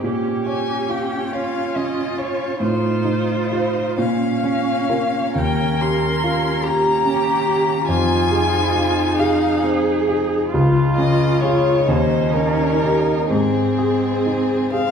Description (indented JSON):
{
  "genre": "classical, slow romantic movement for piano quartet",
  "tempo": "41-49 BPM (dotted quarters)",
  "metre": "6/8",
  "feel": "rubato",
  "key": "unclear",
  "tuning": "A4 = 439 Hz",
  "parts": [
    { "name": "rich cello", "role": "second line", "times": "0.0-14.9 s", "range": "C4 to Bb4", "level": "-23 LUFS", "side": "right 4 dB", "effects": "none" },
    { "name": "rich viola", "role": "accompaniment", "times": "0.0-14.9 s", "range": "C4 to F4", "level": "-26 LUFS", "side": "right 1 dB", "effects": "none" },
    { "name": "warm grand piano", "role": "accompaniment", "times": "0.0-14.9 s", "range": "Db2 to Db5", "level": "-20 LUFS", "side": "equal", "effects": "none" },
    { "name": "rich violin", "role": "melody", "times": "0.5-14.9 s", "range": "Ab4 to C6", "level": "-22 LUFS", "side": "left 4 dB", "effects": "none" }
  ],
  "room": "wet recital hall reverb, RT60 1.8 s",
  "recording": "heard from further back in the room",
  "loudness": "-16 LUFS",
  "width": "side -7 dB against mid",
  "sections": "0.0-14.9 A section",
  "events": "none",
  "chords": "0.0 Bbm; 2.6 F7/A; 4.0 Bbm; 5.3 Eb9; 7.9 Fm7; 10.5 Db; 11.9 Eb7; 13.3 Ab"
}